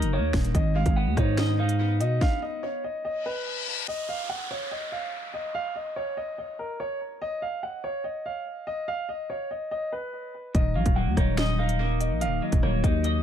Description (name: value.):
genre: hip hop, drill.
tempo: 144 BPM.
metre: 4/4.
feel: half-time.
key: Eb minor.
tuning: A4 = 440 Hz.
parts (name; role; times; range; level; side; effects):
warm concert grand piano; melody; 0.0-13.2 s; Bb4 to Gb5; -31 LUFS; right 1 dB; low-pass filter, analog delay.
clean electric guitar; accompaniment; 0.0-2.8, 10.5-13.2 s; Eb3 to Eb5; -30 LUFS; left 1 dB; wide subtle chorus, low-pass filter, analog delay.
growling 808-style bass; bass; 0.0-2.2, 10.5-13.2 s; Eb1 to Cb3; -25 LUFS; equal; none.
drill drum kit; drums; 0.0-2.3, 10.5-13.1 s; finger snaps, hi-hat, kick drum, rim click, snare drum; -26 LUFS; equal; none.
reverse cymbal and downlifter; sound effects; 3.2-7.2 s; none; -34 LUFS; left 2 dB; none.
room: little or no reverb.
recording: echo-heavy mix.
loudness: -25 LUFS.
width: side -9 dB against mid.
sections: 0.0-3.9 A section; 3.9-13.2 B section.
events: stop 2.2-3.9; reverse cymbal 3.2-3.9.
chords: 0.0 Ebm; 0.5 Abm; 3.9 N.C.; 10.5 Ebm.